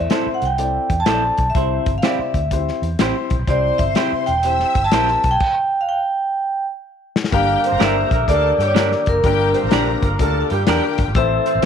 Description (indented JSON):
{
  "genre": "uptempo 1960s-style soul",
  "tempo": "125 BPM",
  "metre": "4/4",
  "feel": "swing 65% on 8ths",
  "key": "G dorian",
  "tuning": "A4 = 440 Hz",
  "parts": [
    { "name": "vibraphone with hard mallets", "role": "melody", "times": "0.0-11.6 s", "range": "Bb4 to A5", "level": "-19 LUFS", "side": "right 1 dB", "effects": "none" },
    { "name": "dark grand piano", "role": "accompaniment", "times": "0.0-11.7 s", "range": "G2 to D5", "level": "-24 LUFS", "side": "left 10 dB", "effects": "none" },
    { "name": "vintage muted fingered electric bass", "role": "bass", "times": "0.0-11.7 s", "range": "E1 to G2", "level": "-22 LUFS", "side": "right 1 dB", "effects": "none" },
    { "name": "electric guitar through a small old amp", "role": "stabs", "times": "0.1-11.7 s", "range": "C4 to D5", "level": "-23 LUFS", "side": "right 13 dB", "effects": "none" },
    { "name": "warm soul drum kit", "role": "drums", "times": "0.1-11.7 s", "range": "crash cymbal, hi-hat, kick drum, snare drum", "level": "-21 LUFS", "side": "left 2 dB", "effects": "none" },
    { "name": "mellow horn section", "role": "second line", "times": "1.6-3.9, 7.6-11.7 s", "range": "G3 to C5", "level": "-26 LUFS", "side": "right 12 dB", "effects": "slapback echo" },
    { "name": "warm studio violin section", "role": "second line", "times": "3.5-11.1 s", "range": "G4 to E6", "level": "-28 LUFS", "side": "left 11 dB", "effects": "slapback echo" },
    { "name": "glockenspiel with rubber mallets", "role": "second line", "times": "7.3-11.7 s", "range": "Bb5 to F6", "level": "-30 LUFS", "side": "left 13 dB", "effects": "none" },
    { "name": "tonewheel organ", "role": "sustained chords", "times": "7.3-11.7 s", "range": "D3 to A4", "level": "-30 LUFS", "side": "equal", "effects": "slow rotary speaker, overdrive" }
  ],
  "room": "light reverb, studio reverb",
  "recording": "1960s-style stereo with parts hard left and right",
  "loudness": "-16 LUFS",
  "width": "side -8 dB against mid",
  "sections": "0.0-7.3 A section; 7.3-11.7 B section",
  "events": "stop 5.4-7.3; drum fill 6.4-7.3",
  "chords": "0.0 Am; 1.6 C; 7.3 Gm",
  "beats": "0.11 0.59 1.07 | 1.55 2.03 2.51 3.00 | 3.48 3.96 4.44 4.92 | 5.40 5.88 6.36 6.84 | 7.32 7.80 8.28 8.76 | 9.24 9.72 10.20 10.68 | 11.16 11.63"
}